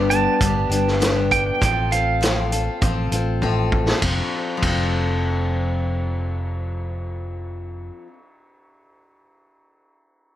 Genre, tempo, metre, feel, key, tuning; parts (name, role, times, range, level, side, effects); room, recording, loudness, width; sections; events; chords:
folk rock and heartland rock; 100 BPM; 4/4; straight; F lydian; A4 = 440 Hz
picked steel-string acoustic guitar; accompaniment; 0.0-8.2 s; G2 to A4; -24 LUFS; left 3 dB; plate reverb
fingered electric bass; bass; 0.0-7.9 s; F1 to A1; -24 LUFS; equal
pedal steel guitar; second line; 0.1-3.1 s; F5 to A5; -23 LUFS; right 5 dB; analog delay, plate reverb
vintage drum kit; drums; 0.1-4.8 s; hi-hat, kick drum, ride cymbal, snare drum; -24 LUFS; equal
light reverb; -19 LUFS; side -12 dB against mid
0.0-4.0 A section; 4.0-6.4 B section
pedal steel guitar solo 0.0-4.0; drum fill 3.4-4.0
0.0 G; 1.6 F/A; 4.0 F